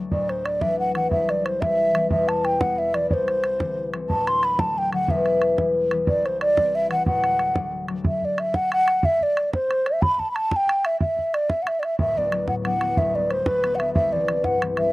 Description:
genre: celtic folk, Celtic jig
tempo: 122 BPM (dotted quarters)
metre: 6/8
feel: straight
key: D mixolydian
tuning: A4 = 440 Hz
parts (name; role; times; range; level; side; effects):
- concert harp; accompaniment; 0.0-14.9 s; D1 to D4; -25 LUFS; left 3 dB; slapback echo
- mellow hollow wooden flute; melody; 0.1-14.9 s; B4 to C6; -21 LUFS; equal; slapback echo
- bodhran; percussion; 0.1-14.8 s; none; -25 LUFS; right 1 dB; none
room: little or no reverb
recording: recorded outdoors, with no room sound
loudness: -20 LUFS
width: side -19 dB against mid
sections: 0.1-8.1 A section; 8.1-14.9 B section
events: none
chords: 0.1 Dadd9; 1.1 C; 2.1 Em; 3.1 Cadd9; 4.1 D; 5.1 Em; 6.1 C; 7.1 D; 8.1 N.C.; 12.0 D6; 13.0 Gadd9/D; 13.9 C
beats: | 0.12 0.62 | 1.11 1.61 | 2.11 2.60 | 3.10 3.60 | 4.09 4.59 | 5.08 5.58 | 6.08 6.57 | 7.06 7.56 | 8.05 8.54 | 9.04 9.53 | 10.02 10.51 | 11.01 11.50 | 11.99 12.48 | 12.97 13.46 | 13.95 14.44

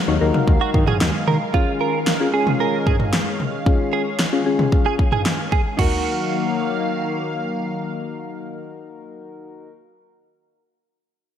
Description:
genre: synth-pop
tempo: 113 BPM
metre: 4/4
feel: straight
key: Eb minor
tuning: A4 = 440 Hz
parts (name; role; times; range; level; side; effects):
- phased analog pad; sustained chords; 0.0-9.7 s; Eb3 to F5; -26 LUFS; left 1 dB; phaser, chorus
- soft electric-piano-like synth keys; accompaniment; 0.1-9.7 s; Db4 to Db5; -25 LUFS; left 4 dB; chorus
- chorused synth bass; bass; 0.1-1.4 s; Eb2 to Eb3; -21 LUFS; equal; none
- pop drum kit; drums; 0.3-5.9 s; crash cymbal, kick drum, snare drum, toms; -20 LUFS; equal; gated reverb
- direct-recorded clean electric guitar; second line; 0.6-7.3 s; F4 to Bb4; -25 LUFS; right 7 dB; analog chorus, analog delay
room: moderate lush hall reverb, RT60 2.1 s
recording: none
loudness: -17 LUFS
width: side -9 dB against mid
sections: 0.0-5.8 A section; 5.8-10.0 B section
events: none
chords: 0.0 Ebmadd9; 1.5 Dbadd9; 5.8 Ebmadd9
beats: 0.48 1.01 | 1.54 2.07 2.60 3.13 | 3.66 4.19 4.72 5.26 | 5.79 6.32 6.85 7.38 | 7.91 8.44 8.97 9.50

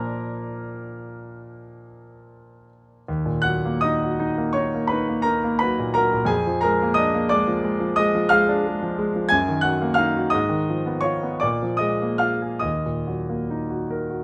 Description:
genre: classical, romantic nocturne for solo piano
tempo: 47-62 BPM (dotted quarters)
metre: 9/8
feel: rubato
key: Eb minor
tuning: A4 = 440 Hz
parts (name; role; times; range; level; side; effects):
- clear concert grand piano; solo; 0.0-14.2 s; Eb2 to Ab6; -23 LUFS; equal; none
room: light reverb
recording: dark, warm production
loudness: -22 LUFS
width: mono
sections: 0.0-14.2 A section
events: none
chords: 0.0 Bb; 3.1 Ebm; 6.3 Bb7/F; 9.3 Ebm/Gb; 10.3 Fm7b5/Ab; 11.4 Bb7; 12.6 Ebm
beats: 0.80 1.93 | 3.08 4.21 5.26 | 6.30 7.33 8.33 | 9.32 10.34 11.44 | 12.65 13.88

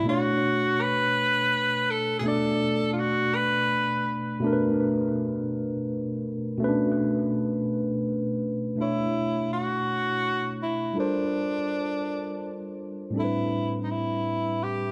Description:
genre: R&B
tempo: 55 BPM (dotted quarters)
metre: 6/8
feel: straight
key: unclear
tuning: A4 = 442 Hz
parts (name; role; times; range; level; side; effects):
- warm tenor saxophone; melody; 0.0-4.2, 8.8-14.9 s; D4 to B4; -28 LUFS; equal; tape echo
- tine electric piano; accompaniment; 0.0-14.9 s; A2 to D5; -29 LUFS; equal; tape echo
room: moderate echo chamber reverb, RT60 1.6 s, studio ambience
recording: echo-heavy mix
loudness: -26 LUFS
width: mono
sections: 0.0-8.8 A section; 8.8-14.9 B section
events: none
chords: 0.1 Bm9; 8.8 Bm11; 11.0 Gm11; 13.1 Am11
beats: | 0.05 1.14 | 2.23 3.33 | 4.42 5.51 | 6.60 7.69 | 8.78 9.87 | 10.96 12.05 | 13.14 14.23

